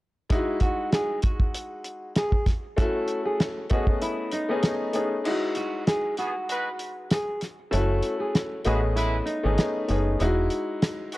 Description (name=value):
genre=hip hop, boom-bap hip-hop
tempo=97 BPM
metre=4/4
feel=swing 54% on 16ths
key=E major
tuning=A4 = 438 Hz
part: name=clear upright piano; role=accompaniment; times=0.3-11.2 s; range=G#3 to D#5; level=-28 LUFS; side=left 2 dB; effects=high-pass filter, low-pass filter
part: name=cloth-damped thuddy drum kit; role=drums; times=0.3-11.2 s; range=crash cymbal, hi-hat, kick drum, rim click, snare drum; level=-25 LUFS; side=equal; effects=none
part: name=nylon-string guitar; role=melody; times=0.6-10.2 s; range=D#4 to A4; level=-30 LUFS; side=right 1 dB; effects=high-pass filter, low-pass filter
part: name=bright trumpet section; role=stabs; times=6.2-11.2 s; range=G#3 to B4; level=-32 LUFS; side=right 1 dB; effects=high-pass filter, low-pass filter, analog delay
part: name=deep dub fingered electric bass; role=bass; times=7.7-10.5 s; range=E1 to A1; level=-24 LUFS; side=equal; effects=none
room=studio reverb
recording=dry, gritty hardware recording, cassette tape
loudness=-23 LUFS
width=side -18 dB against mid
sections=0.3-5.3 A section; 5.3-11.2 B section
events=kick muted 5.3-11.2; break 5.3-7.7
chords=0.3 Emaj9; 2.8 F#m7; 3.7 Amaj9#11; 5.3 Emaj9; 7.7 F#m7; 8.7 Amaj9#11; 10.2 Emaj9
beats=| 0.31 0.93 1.54 2.16 | 2.78 3.40 4.02 4.64 | 5.25 5.87 6.49 7.11 | 7.73 8.35 8.97 9.59 | 10.20 10.82